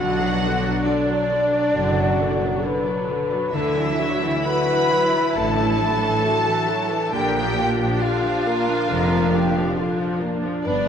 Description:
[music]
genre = cinematic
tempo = 68 BPM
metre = 4/4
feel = rubato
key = unclear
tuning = A4 = 440 Hz
[part]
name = warm symphonic violin section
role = melody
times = 0.0-10.9 s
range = D5 to B5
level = -28 LUFS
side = left 4 dB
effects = none
[part]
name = concert flute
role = second line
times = 0.0-10.9 s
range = D5 to B5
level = -26 LUFS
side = equal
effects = none
[part]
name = rich symphonic violin section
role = second line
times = 0.0-10.9 s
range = D4 to B4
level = -31 LUFS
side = left 1 dB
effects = none
[part]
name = warm clarinet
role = second line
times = 0.0-10.9 s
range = D4 to B4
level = -28 LUFS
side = equal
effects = none
[part]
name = rich symphonic viola section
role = accompaniment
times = 0.0-10.9 s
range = D3 to E4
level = -27 LUFS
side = right 2 dB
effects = none
[part]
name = clear French horn section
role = sustained chords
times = 0.0-10.9 s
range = D4 to B4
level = -26 LUFS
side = left 2 dB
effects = none
[part]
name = concert harp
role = arpeggios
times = 0.0-10.9 s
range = G2 to E5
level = -28 LUFS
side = left 5 dB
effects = none
[part]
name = rich studio cello section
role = bass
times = 0.0-10.9 s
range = F2 to D3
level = -30 LUFS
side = right 3 dB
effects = none
[part]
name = rich symphonic double bass section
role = bass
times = 0.0-10.9 s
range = F1 to D2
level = -29 LUFS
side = right 4 dB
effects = none
[sound]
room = wet concert hall reverb, RT60 2.4 s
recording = worn, warbling old tape, cassette tape, warbly pitch drift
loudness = -18 LUFS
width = side -8 dB against mid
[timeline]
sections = 0.0-10.9 A section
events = none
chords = 0.0 Bm; 3.5 Dadd9; 7.1 Bb

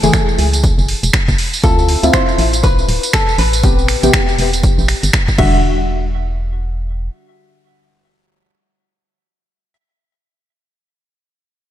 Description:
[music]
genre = deep house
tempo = 120 BPM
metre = 4/4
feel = swing 60% on 16ths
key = unclear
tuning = A4 = 441 Hz
[part]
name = deep mellow chord stab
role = stabs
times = 0.0-9.7 s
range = C3 to G#4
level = -18 LUFS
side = left 1 dB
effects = chorus, sidechain pumping, ping-pong delay
[part]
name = organ-like FM bass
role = bass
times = 0.0-7.1 s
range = D1 to D2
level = -17 LUFS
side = equal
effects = sidechain pumping
[part]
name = punchy analog drum machine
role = drums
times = 0.0-5.5 s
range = crash cymbal, finger snaps, hi-hat, tambourine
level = -19 LUFS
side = right 1 dB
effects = none
[part]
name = electronic kick drum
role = drums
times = 0.1-5.5 s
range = none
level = -15 LUFS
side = equal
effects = none
[part]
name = vintage hollow-body jazz guitar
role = melody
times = 1.6-9.7 s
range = A4 to E5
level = -21 LUFS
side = left 3 dB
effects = vintage 12-bit sampler grit, ping-pong delay
[sound]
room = moderate lush hall reverb, RT60 2.0 s, digital ambience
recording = dreamy mix soaked in reverb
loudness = -12 LUFS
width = side -12 dB against mid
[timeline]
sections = 0.0-5.6 A section; 5.6-9.6 B section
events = drop 0.0-5.6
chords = 0.0 F#m9; 1.6 Dm9; 3.6 Am9; 5.4 Em9

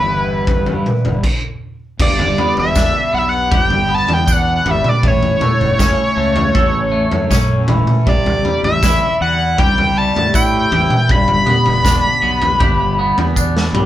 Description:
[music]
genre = psychedelic rock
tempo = 79 BPM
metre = 4/4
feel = straight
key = unclear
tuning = A4 = 439 Hz
[part]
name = overdriven synth lead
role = melody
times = 0.0-13.4 s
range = B4 to B5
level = -17 LUFS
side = equal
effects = distortion
[part]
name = twangy electric guitar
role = riff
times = 0.0-13.9 s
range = G2 to A4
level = -20 LUFS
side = equal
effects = phaser
[part]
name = fuzz fingered electric bass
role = bass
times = 0.0-13.9 s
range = E1 to A2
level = -20 LUFS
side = equal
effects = overdrive
[part]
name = raw garage drum kit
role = drums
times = 0.5-13.9 s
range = crash cymbal, kick drum, snare drum, toms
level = -17 LUFS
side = equal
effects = none
[part]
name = tambourine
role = percussion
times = 2.8-13.5 s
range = none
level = -27 LUFS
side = right 5 dB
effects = none
[sound]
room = light reverb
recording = band playing live in one room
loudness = -12 LUFS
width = side -13 dB against mid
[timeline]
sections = 0.0-2.0 A section; 2.0-13.9 B section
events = stop 1.2-2.0; drum fill 13.4-13.9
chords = 0.0 G6; 2.0 G; 5.0 A; 8.1 C; 11.1 G

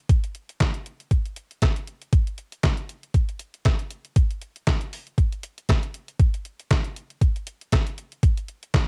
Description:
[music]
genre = funk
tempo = 118 BPM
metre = 4/4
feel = swing 56% on 16ths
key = none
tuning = none
[part]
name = detuned 8-bit digital drum machine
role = drums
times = 0.1-8.9 s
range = handclaps, hi-hat, kick drum, snare drum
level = -23 LUFS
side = equal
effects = cassette tape
[sound]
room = light reverb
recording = home recording on cassette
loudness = -25 LUFS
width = mono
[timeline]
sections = 0.0-8.9 A section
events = none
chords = none

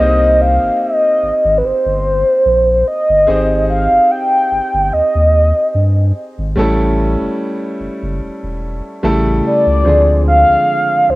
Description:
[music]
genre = contemporary R&B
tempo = 73 BPM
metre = 4/4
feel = swing 54% on 16ths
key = C minor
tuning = A4 = 440 Hz
[part]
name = mellow horn-like synth lead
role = melody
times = 0.0-11.2 s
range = B4 to G5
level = -12 LUFS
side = equal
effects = chorus, plate reverb, tape echo
[part]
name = clear grand piano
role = accompaniment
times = 0.0-11.2 s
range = C#3 to C5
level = -20 LUFS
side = equal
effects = cassette tape
[part]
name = saturated sub bass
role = bass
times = 0.0-11.2 s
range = E1 to G2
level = -16 LUFS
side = equal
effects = none
[sound]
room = moderate studio reverb, RT60 0.5 s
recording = home recording on cassette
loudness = -11 LUFS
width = side -19 dB against mid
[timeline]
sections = 0.0-11.2 A section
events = none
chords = 0.0 Cm7; 3.3 Abmaj7; 6.6 A7; 9.9 Dm7b5

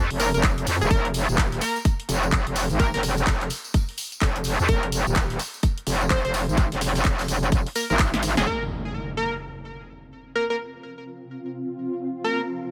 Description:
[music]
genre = bass house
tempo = 127 BPM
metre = 4/4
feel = swing 61% on 16ths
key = F minor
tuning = A4 = 440 Hz
[part]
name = metallic wobble bass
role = bass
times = 0.0-8.5 s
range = Eb1 to F2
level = -26 LUFS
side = equal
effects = distortion, chorus, overdrive, sidechain pumping
[part]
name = house drum kit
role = drums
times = 0.1-8.4 s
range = handclaps, hi-hat, snare drum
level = -32 LUFS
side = equal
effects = none
[part]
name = plucky unison lead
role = melody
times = 0.2-12.4 s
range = Ab4 to C5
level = -30 LUFS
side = equal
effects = delay
[part]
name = tight funk drum kit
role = drums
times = 0.2-12.6 s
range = hi-hat, snare drum, tambourine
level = -41 LUFS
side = equal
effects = none
[part]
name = tambourine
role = percussion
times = 0.2-8.4 s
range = none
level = -37 LUFS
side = equal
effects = none
[part]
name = electronic kick drum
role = drums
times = 0.4-8.1 s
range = none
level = -24 LUFS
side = equal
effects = none
[part]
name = impact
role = sound effects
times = 8.5-10.4 s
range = none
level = -36 LUFS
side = equal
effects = none
[part]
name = granular cloud pad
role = texture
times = 10.4-12.7 s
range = C4 to F5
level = -34 LUFS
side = equal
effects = built-in reverb, sidechain pumping
[sound]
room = light reverb, small room ambience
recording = none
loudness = -24 LUFS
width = mono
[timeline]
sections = 0.0-8.5 A section; 8.5-12.7 B section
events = drum fill 8.1-8.5; band accent 8.3; impact 8.5-10.4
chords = 0.0 Ebsus2 (rootless); 8.5 F5

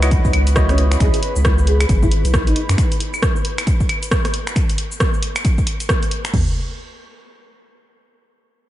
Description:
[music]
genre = UK garage, two-step garage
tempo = 135 BPM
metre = 4/4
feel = swing 60% on 16ths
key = C# minor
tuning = A4 = 441 Hz
[part]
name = nylon-string guitar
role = melody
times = 0.0-2.6 s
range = C#4 to G#4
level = -26 LUFS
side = equal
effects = ensemble chorus, tape echo
[part]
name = warm analog pad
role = sustained chords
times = 0.0-4.6 s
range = B4 to B5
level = -32 LUFS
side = left 1 dB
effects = chorus, sidechain pumping
[part]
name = percussive organ stab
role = stabs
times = 0.0-1.2 s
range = E4 to D#5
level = -26 LUFS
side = equal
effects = chorus, ping-pong delay
[part]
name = saturated sub bass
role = bass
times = 0.0-2.8 s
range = G#1 to F#2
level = -16 LUFS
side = equal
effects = none
[part]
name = punchy analog drum machine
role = drums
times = 0.0-6.3 s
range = claves, finger snaps, hi-hat, rim click, shaker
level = -22 LUFS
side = equal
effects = overdrive
[part]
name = house drum kit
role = drums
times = 0.1-6.5 s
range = crash cymbal, kick drum, toms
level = -18 LUFS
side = equal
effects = overdrive
[sound]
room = light reverb, digital ambience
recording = nothing above 10.6 kHz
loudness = -15 LUFS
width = side -14 dB against mid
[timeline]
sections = 0.0-6.3 A section; 6.3-8.7 B section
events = drop 0.0-6.3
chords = 0.0 C#m11; 2.6 N.C.

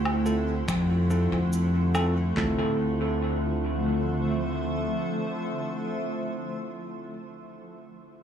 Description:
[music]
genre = ambient dub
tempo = 71 BPM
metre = 4/4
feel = straight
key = D minor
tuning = A4 = 438 Hz
[part]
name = granular cloud pad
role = sustained chords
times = 0.0-6.5 s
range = D3 to E5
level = -30 LUFS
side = equal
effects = built-in reverb
[part]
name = upright bass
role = bass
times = 0.0-4.9 s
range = D2 to F2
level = -26 LUFS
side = left 1 dB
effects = none
[part]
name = electronic woodblock, cabasa and finger snaps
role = drums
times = 0.1-2.1 s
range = none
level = -37 LUFS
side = equal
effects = dub echo
[part]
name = bell-like tine electric piano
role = stabs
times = 0.3-7.1 s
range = C4 to A4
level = -32 LUFS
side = right 2 dB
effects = dub echo
[part]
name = organic electronic drum kit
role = drums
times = 0.7-2.6 s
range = handclaps, kick drum, toms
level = -32 LUFS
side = right 1 dB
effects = none
[sound]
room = light reverb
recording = studio reverb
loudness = -24 LUFS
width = side -8 dB against mid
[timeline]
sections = 0.0-2.4 A section; 2.4-5.8 B section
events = none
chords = 0.0 Dm7

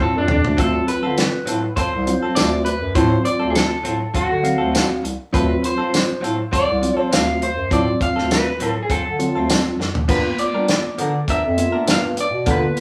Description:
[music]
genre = straight-eighth soul blues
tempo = 101 BPM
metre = 4/4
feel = straight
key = unclear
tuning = A4 = 440 Hz
[part]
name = electric guitar through a small old amp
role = melody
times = 0.0-12.8 s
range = D4 to E#5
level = -25 LUFS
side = equal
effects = none
[part]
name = bright tine electric piano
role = accompaniment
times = 0.0-12.8 s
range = F#3 to E#5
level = -26 LUFS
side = equal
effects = none
[part]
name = direct-recorded clean electric guitar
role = stabs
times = 0.0-12.8 s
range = F3 to A#4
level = -29 LUFS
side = equal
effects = none
[part]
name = warm bass clarinet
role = bass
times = 0.0-12.7 s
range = C2 to G3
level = -25 LUFS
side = equal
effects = none
[part]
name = warm soul drum kit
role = drums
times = 0.3-12.8 s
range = crash cymbal, hi-hat, kick drum, snare drum, tambourine, toms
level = -24 LUFS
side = equal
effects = none
[sound]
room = wet studio reverb, RT60 0.6 s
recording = band playing live in one room, small room ambience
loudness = -19 LUFS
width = mono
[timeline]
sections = 0.6-12.8 A section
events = drum fill 0.0-0.6, 9.8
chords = 0.0 D7#9; 10.1 G7#9

